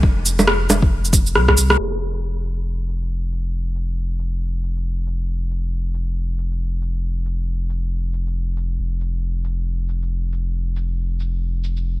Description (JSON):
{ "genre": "future garage", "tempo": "137 BPM", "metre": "4/4", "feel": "swing 61% on 16ths", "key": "unclear", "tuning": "A4 = 437 Hz", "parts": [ { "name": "warm sub bass", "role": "bass", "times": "0.0-12.0 s", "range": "F1 to C2", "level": "-21 LUFS", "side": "equal", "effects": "none" }, { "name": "electronic kick drum", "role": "drums", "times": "0.0-1.5 s", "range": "none", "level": "-16 LUFS", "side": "equal", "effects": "none" }, { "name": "electronic cabasa, shaker, bongos and rim click", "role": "drums", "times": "0.3-11.8 s", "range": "none", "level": "-18 LUFS", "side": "right 1 dB", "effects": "none" } ], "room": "little or no reverb", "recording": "low-pass filter", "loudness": "-19 LUFS", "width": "side -18 dB against mid", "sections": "0.0-1.8 A section; 1.8-12.0 B section", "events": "drum fill 1.3-1.8; band accent 1.7", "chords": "none", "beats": "| 0.03 0.47 0.91 1.34 | 1.78 2.22 2.66 3.10 | 3.53 3.97 4.41 4.85 | 5.29 5.72 6.16 6.60 | 7.04 7.48 7.91 8.35 | 8.79 9.23 9.67 10.10 | 10.54 10.98 11.42 11.86" }